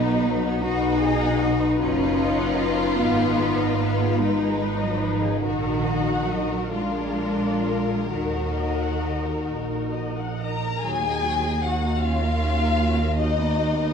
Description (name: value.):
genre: classical, slow romantic movement for symphony orchestra.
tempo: 43-52 BPM (dotted quarters).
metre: 6/8.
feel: rubato.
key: Eb minor.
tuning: A4 = 436 Hz.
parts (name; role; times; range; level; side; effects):
warm symphonic violin section; melody; 0.0-13.9 s; Bb4 to Bb5; -30 LUFS; left 6 dB; none.
warm symphonic violin section; second line; 0.0-13.9 s; D#4 to Bb4; -29 LUFS; left 4 dB; none.
warm symphonic viola section; accompaniment; 0.0-13.9 s; Gb3 to F#5; -30 LUFS; equal; none.
dark French horn section; sustained chords; 0.0-10.5 s; D4 to F#4; -28 LUFS; left 7 dB; none.
rich symphonic cello section; bass; 0.0-13.9 s; Eb2 to D#4; -27 LUFS; right 2 dB; none.
rich symphonic double bass section; bass; 0.0-13.9 s; F#1 to Eb2; -27 LUFS; right 4 dB; none.
mellow tuba; bass; 10.8-13.9 s; Eb2; -28 LUFS; right 3 dB; none.
room: wet scoring stage reverb, RT60 1.8 s.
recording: dark, warm production.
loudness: -21 LUFS.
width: side -6 dB against mid.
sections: 0.0-10.8 A section; 10.8-13.9 B section.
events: none.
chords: 0.0 B; 3.0 Fm7b5/Ab; 5.4 Ebm/Bb; 6.7 Bb7; 8.1 Ebm; 12.0 Gb/Eb; 13.2 B/D#.